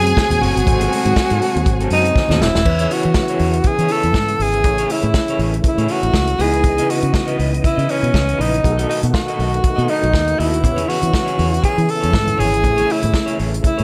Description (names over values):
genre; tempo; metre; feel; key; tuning
disco; 120 BPM; 4/4; swing 56% on 16ths; E major; A4 = 439 Hz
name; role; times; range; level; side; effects
breathy tenor saxophone; melody; 0.0-13.8 s; C#4 to A4; -21 LUFS; equal; none
clear studio string section; second line; 0.0-2.4 s; G#4 to G#5; -26 LUFS; equal; none
electric guitar through a small old amp; accompaniment; 0.0-13.8 s; B#3 to D#5; -30 LUFS; equal; none
overdriven tine electric piano; accompaniment; 0.0-13.8 s; B2 to C#5; -29 LUFS; equal; none
overdriven tonewheel organ; sustained chords; 0.0-13.8 s; B#2 to D#5; -28 LUFS; equal; chorus vibrato, stopped rotary speaker
fingered electric bass; bass; 0.0-13.8 s; D#1 to E3; -22 LUFS; equal; none
warm soul drum kit; drums; 0.1-13.8 s; crash cymbal, hi-hat, kick drum, snare drum; -22 LUFS; equal; none
congas; percussion; 0.2-2.5, 10.6-13.8 s; none; -30 LUFS; equal; none
room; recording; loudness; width
light reverb, studio ambience; none; -17 LUFS; mono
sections
0.0-2.7 A section; 2.7-13.8 B section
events
drum fill 2.2-2.7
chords
0.0 G#7b9; 2.7 E6; 4.6 Amaj7; 6.4 C#m9; 8.6 B7; 10.6 E6; 12.6 Amaj7